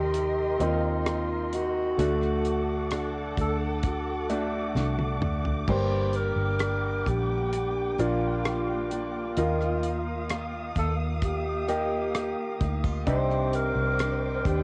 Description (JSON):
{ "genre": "pop ballad", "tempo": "65 BPM", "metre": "4/4", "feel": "straight", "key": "G minor", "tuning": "A4 = 440 Hz", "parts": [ { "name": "breathy alto saxophone", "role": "melody", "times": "0.0-14.6 s", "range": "F4 to C5", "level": "-33 LUFS", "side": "equal", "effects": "cassette tape" }, { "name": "clear concert grand piano", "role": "accompaniment", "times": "0.0-14.6 s", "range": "G2 to G4", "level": "-34 LUFS", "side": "equal", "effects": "cassette tape" }, { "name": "warm studio string section", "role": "sustained chords", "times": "0.0-14.6 s", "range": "Bb3 to Eb6", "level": "-38 LUFS", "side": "equal", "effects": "cassette tape" }, { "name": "picked steel-string acoustic guitar", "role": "arpeggios", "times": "0.0-14.6 s", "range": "G2 to Bb4", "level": "-41 LUFS", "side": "equal", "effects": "cassette tape" }, { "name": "vintage muted fingered electric bass", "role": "bass", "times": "0.0-14.6 s", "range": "G1 to Eb2", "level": "-32 LUFS", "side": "equal", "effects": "none" }, { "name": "damped 70s drum kit", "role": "drums", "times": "0.1-14.6 s", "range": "crash cymbal, hi-hat, kick drum, rim click, snare drum, toms", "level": "-35 LUFS", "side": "equal", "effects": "cassette tape" } ], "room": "light reverb, small room ambience", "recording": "home recording on cassette, nothing above 10.4 kHz", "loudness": "-28 LUFS", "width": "mono", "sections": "0.0-14.6 A section", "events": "drum fill 4.8-5.7", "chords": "0.0 Cm7; 2.0 D; 5.7 Gm; 9.4 Ebsus2; 13.1 Cmadd9" }